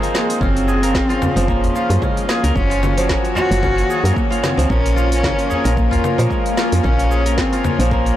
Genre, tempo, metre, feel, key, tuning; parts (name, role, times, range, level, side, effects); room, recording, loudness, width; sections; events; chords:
organic downtempo; 112 BPM; 4/4; swing 55% on 16ths; A4 = 442 Hz
hand-pumped harmonium; accompaniment; 0.0-8.2 s; Db3 to Db4; -24 LUFS; left 3 dB; sidechain pumping, ping-pong delay
granular cloud pad; sustained chords; 0.0-8.2 s; Eb3 to F5; -29 LUFS; left 2 dB; built-in reverb, sidechain pumping
kora; arpeggios; 0.0-8.2 s; F3 to Bb4; -23 LUFS; right 1 dB; ping-pong delay
deep house drum kit; drums; 0.0-8.2 s; congas, hi-hat, shaker, snare drum; -24 LUFS; left 1 dB
dark cello; melody; 0.1-8.2 s; Ab3 to Gb4; -21 LUFS; equal; ping-pong delay
woody FM bass; bass; 0.4-8.1 s; Gb1 to Bb2; -17 LUFS; equal; tube saturation, sidechain pumping
electronic kick drum; drums; 0.4-8.0 s; -23 LUFS; equal
udu; percussion; 1.2-7.8 s; -25 LUFS; left 1 dB
small room reverb; blown-out, overdriven recording, overdrive; -14 LUFS; side -12 dB against mid
0.0-8.2 A section
0.4 Ebm7/Gb; 4.7 Bbm